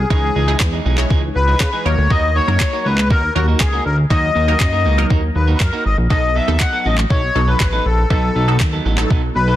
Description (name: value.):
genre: dance-pop.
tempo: 120 BPM.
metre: 4/4.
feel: straight.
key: unclear.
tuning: A4 = 441 Hz.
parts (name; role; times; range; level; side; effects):
accordion; melody; 0.0-9.6 s; F#4 to F#5; -20 LUFS; left 4 dB; light tremolo tuning, dub echo.
fat analog bass; bass; 0.0-9.6 s; G#1 to C#3; -17 LUFS; equal; sidechain pumping.
wide unison pluck; accompaniment; 0.1-9.5 s; F#3 to C#5; -24 LUFS; right 1 dB; phaser, sidechain pumping.
electric guitar at the edge of break-up; riff; 0.1-9.6 s; E3 to A#4; -26 LUFS; right 7 dB; lush chorus.
smooth R&B drum kit; drums; 0.1-9.2 s; handclaps, kick drum, snare drum; -18 LUFS; equal; none.
room: little or no reverb.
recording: dense, heavily limited modern master.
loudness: -14 LUFS.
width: side -13 dB against mid.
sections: 0.0-9.6 A section.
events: none.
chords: 0.0 C#madd9; 1.9 D#m; 6.1 B7.